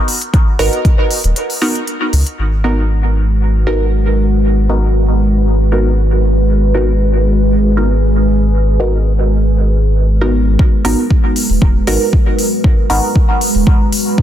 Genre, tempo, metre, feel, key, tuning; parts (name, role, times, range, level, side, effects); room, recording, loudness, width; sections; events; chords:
dub techno; 117 BPM; 4/4; straight; G# minor; A4 = 440 Hz
electronic hi-hat; drums; 0.1-2.4, 10.8-14.0 s; -20 LUFS; left 2 dB; small room ambience
electronic kick drum; drums; 0.3-1.0, 10.6-14.2 s; -11 LUFS; equal; small room ambience
filtered dub chord stab; stabs; 0.6-13.1 s; B3 to A#4; -19 LUFS; right 1 dB; chorus, phaser, sidechain pumping, dub echo
soft dub sub bass; bass; 0.6-13.6 s; D#1 to C#2; -13 LUFS; equal; sidechain pumping
deep dark ambient pad; sustained chords; 3.0-14.2 s; G#3 to B4; -18 LUFS; equal; chorus, built-in reverb, sidechain pumping
light reverb; dense, heavily limited modern master; -11 LUFS; side -11 dB against mid
0.0-2.4 A section; 2.4-10.6 B section; 10.6-14.2 A section
break 1.4-2.4
0.0 G#m7 (rootless); 2.4 G#m7